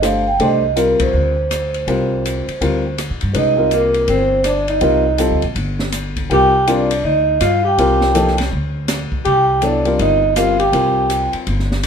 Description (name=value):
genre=modal jazz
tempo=162 BPM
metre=4/4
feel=swing 63% on 8ths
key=C dorian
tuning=A4 = 440 Hz
part: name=vibraphone with soft mallets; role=melody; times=0.0-11.3 s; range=Bb4 to G5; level=-17 LUFS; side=right 3 dB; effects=none
part: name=dark grand piano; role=accompaniment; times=0.0-11.8 s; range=F3 to C5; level=-20 LUFS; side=left 3 dB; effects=none
part: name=upright bass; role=bass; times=0.0-11.9 s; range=G1 to A2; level=-21 LUFS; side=equal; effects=none
part: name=open jazz drum kit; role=drums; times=0.0-11.9 s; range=hi-hat, kick drum, ride cymbal, rim click, snare drum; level=-25 LUFS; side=left 1 dB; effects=none
part: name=breathy alto saxophone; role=second line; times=3.4-11.3 s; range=Bb3 to G4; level=-20 LUFS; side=left 5 dB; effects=none
room=light reverb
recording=minimal, uncompressed stereo recording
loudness=-14 LUFS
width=side -7 dB against mid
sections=0.0-11.9 A section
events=band accent 0.9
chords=0.4 Gm/C; 3.3 Cm7; 6.3 Gm/C; 9.3 Cm9